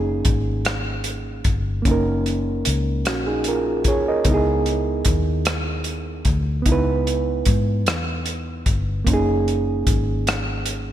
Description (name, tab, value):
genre	slow six-eight R&B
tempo	50 BPM (dotted quarters)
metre	6/8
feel	straight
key	F# major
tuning	A4 = 439 Hz
part	overdriven reed electric piano	accompaniment	0.0-10.9 s	A#3 to D#5	-23 LUFS	right 3 dB	none
part	vintage muted fingered electric bass	bass	0.0-10.9 s	F#1 to G#2	-24 LUFS	left 1 dB	none
part	warm soul drum kit	drums	0.2-10.8 s	hi-hat, kick drum, rim click	-22 LUFS	left 1 dB	none
room	light reverb, studio ambience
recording	bright 1980s-style digital production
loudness	-19 LUFS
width	side -11 dB against mid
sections	0.0-10.9 A section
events	none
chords	0.0 F#69; 4.3 C#m7; 9.1 F#69